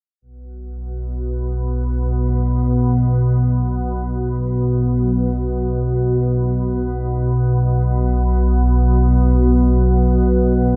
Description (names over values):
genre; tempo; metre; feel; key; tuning
ambient; free time; none; none; unclear; A4 = 439 Hz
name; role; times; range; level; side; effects
organ-like drone; solo; 0.5-10.8 s; B1 to B2; -18 LUFS; equal; ensemble chorus, built-in reverb, tape echo
room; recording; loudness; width
wet echo chamber reverb, RT60 2.3 s; echo-heavy mix; -18 LUFS; mono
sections
0.2-10.8 A section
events
none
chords
none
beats
free time